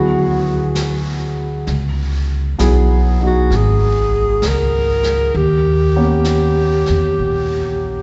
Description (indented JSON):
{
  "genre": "jazz ballad",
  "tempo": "66 BPM",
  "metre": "4/4",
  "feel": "swing 68% on 8ths",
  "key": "unclear",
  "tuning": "A4 = 439 Hz",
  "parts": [
    { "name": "breathy alto saxophone", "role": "melody", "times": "0.0-8.0 s", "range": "F#4 to A#4", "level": "-20 LUFS", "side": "equal", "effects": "none" },
    { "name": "warm concert grand piano", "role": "accompaniment", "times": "0.0-8.0 s", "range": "F#3 to G#4", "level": "-24 LUFS", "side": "equal", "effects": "none" },
    { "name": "upright bass", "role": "bass", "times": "0.0-8.0 s", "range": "G#1 to E2", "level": "-19 LUFS", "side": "equal", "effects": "none" },
    { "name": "jazz brush drum kit", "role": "drums", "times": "0.8-8.0 s", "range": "brushed snare drum, hi-hat, snare drum", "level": "-33 LUFS", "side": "equal", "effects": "none" }
  ],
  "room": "wet cathedral reverb, RT60 4.8 s",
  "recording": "recorded in a church or concert hall, nothing above 7.9 kHz",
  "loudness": "-16 LUFS",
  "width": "mono",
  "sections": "0.0-8.0 A section",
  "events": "none",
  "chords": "0.0 D; 1.7 C#m11; 5.3 D#7b13"
}